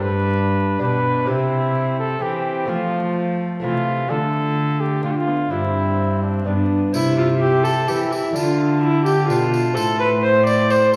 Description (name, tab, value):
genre	classical, renaissance-style consort dance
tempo	128 BPM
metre	3/4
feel	straight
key	C major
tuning	A4 = 440 Hz
part	warm cornet	melody	0.0-11.0 s	D4 to C6	-27 LUFS	equal	none
part	warm viola	second line	0.0-10.9 s	A3 to D5	-24 LUFS	equal	none
part	lute	accompaniment	0.0-11.0 s	G2 to F5	-27 LUFS	equal	none
part	warm cello	bass	0.0-11.0 s	G2 to F3	-25 LUFS	equal	none
part	tambourine	percussion	6.9-11.0 s	none	-38 LUFS	equal	none
room	wet recital hall reverb, RT60 1.4 s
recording	heard from further back in the room, vinyl crackle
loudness	-19 LUFS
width	mono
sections	0.0-6.9 A section; 6.9-11.0 A section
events	none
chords	0.0 G; 1.3 C; 2.7 F; 4.1 Dm; 5.5 Gsus4; 6.5 G; 6.9 C; 8.4 Dm; 9.8 Am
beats	0.35 0.81 | 1.28 1.75 2.22 | 2.69 3.16 3.63 | 4.10 4.57 5.04 | 5.51 5.98 6.46 | 6.94 7.42 7.89 | 8.36 8.83 9.30 | 9.77 10.24 10.71